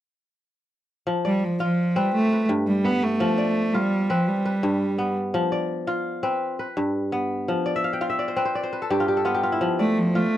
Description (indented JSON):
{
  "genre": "west african traditional",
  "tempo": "112 BPM (dotted quarters)",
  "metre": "12/8",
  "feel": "straight",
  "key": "F lydian",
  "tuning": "A4 = 440 Hz",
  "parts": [
    { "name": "kora", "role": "arpeggios", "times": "1.1-10.4 s", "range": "G2 to G5", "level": "-24 LUFS", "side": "left 1 dB", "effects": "none" },
    { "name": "rich cello", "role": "melody", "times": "1.3-5.2, 9.8-10.4 s", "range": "F3 to B3", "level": "-22 LUFS", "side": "right 1 dB", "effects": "none" }
  ],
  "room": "light reverb",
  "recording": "dry, close 1970s-style studio recording",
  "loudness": "-21 LUFS",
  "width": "side -12 dB against mid",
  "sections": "1.1-10.4 A section",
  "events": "kora fill 7.7-9.6",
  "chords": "1.1 F5; 2.1 G; 3.2 F; 4.3 G; 5.3 F5; 6.4 G; 7.5 F5; 8.5 G; 9.6 F"
}